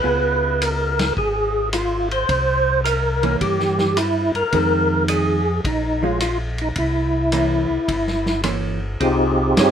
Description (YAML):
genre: soul jazz organ trio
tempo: 107 BPM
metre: 4/4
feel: swing 68% on 8ths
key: unclear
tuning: A4 = 440 Hz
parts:
  - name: percussive tonewheel organ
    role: melody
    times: 0.0-9.7 s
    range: C4 to C5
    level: -19 LUFS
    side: equal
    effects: slow rotary speaker, chorus vibrato
  - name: hollow-body jazz guitar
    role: accompaniment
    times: 0.0-9.7 s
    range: Eb3 to Db5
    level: -24 LUFS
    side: right 5 dB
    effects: none
  - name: mellow tonewheel organ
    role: bass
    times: 0.0-9.7 s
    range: G1 to G2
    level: -24 LUFS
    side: left 1 dB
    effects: chorus vibrato, slow rotary speaker
  - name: vintage drum kit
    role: drums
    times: 0.6-9.7 s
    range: hi-hat, kick drum, ride cymbal, rim click, snare drum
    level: -26 LUFS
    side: equal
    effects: none
room: moderate studio reverb, RT60 0.6 s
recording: minimal, uncompressed stereo recording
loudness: -17 LUFS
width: side -8 dB against mid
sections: 0.0-9.0 A section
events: none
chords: 0.0 Db7; 2.3 C7b9; 4.5 Fm7; 5.6 Bbm7; 6.8 C7b9; 9.0 Fm7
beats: | 0.04 0.60 1.16 1.72 | 2.28 2.84 3.40 3.96 | 4.52 5.08 5.64 6.20 | 6.76 7.32 7.88 8.44 | 9.01 9.57